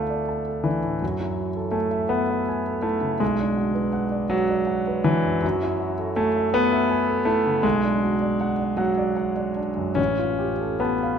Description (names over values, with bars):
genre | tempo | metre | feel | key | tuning
classical, impressionist solo piano | 46-56 BPM (dotted quarters) | 6/8 | rubato | unclear | A4 = 441 Hz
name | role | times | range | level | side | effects
warm concert grand piano | solo | 0.0-11.2 s | A1 to A5 | -21 LUFS | equal | none
room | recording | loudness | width
moderate scoring stage reverb, RT60 1.9 s | minimal, uncompressed stereo recording | -21 LUFS | side -7 dB against mid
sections
0.0-11.2 A section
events
none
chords
0.0 Dm6; 1.0 F#m9; 3.2 Bm6; 5.4 F#m9; 7.6 Bm6; 10.0 Aaug7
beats
| 1.03 2.12 | 3.21 4.33 | 5.44 6.53 | 7.64 8.79 | 9.98